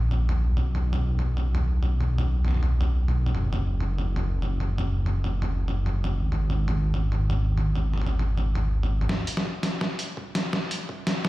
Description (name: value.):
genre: half-time drum and bass.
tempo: 167 BPM.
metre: 4/4.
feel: swing 55% on 16ths, half-time.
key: unclear.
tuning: A4 = 436 Hz.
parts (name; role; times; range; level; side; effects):
dark detuned saw bass; bass; 0.0-9.1 s; Gb1 to Cb2; -24 LUFS; equal; tube saturation.
boom bap sampler-style drum kit; drums; 0.1-11.3 s; hi-hat, snare drum, toms; -29 LUFS; equal; none.
electronic kick drum; drums; 9.1-11.3 s; none; -40 LUFS; equal; high-pass filter on kick, high-pass filter on room.
room: little or no reverb.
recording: played on a big sound system in a bare room, large studio reverb.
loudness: -23 LUFS.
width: side -17 dB against mid.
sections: 0.0-9.1 A section; 9.1-11.3 B section.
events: build-up 9.1-11.3; drum fill 9.1-11.3.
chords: none.